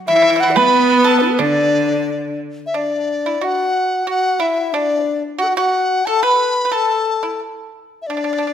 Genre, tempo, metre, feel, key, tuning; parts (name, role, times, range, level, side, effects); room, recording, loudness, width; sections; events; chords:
chinese traditional, Chinese chamber ensemble; 90 BPM; 2/4; rubato; D gong mode; A4 = 440 Hz
reedy large dizi; melody; 0.1-8.5 s; D4 to B5; -17 LUFS; left 1 dB
breathy bright xiao; second line; 0.1-8.5 s; D4 to D5; -22 LUFS; left 5 dB
clear cello; second line; 0.1-2.4 s; D3 to B3; -18 LUFS; right 5 dB
pipa; second line; 0.1-8.5 s; D4 to B4; -23 LUFS; right 6 dB
wet recital hall reverb, RT60 1.6 s; -14 LUFS; side -9 dB against mid
0.0-2.7 A section; 2.7-8.5 B section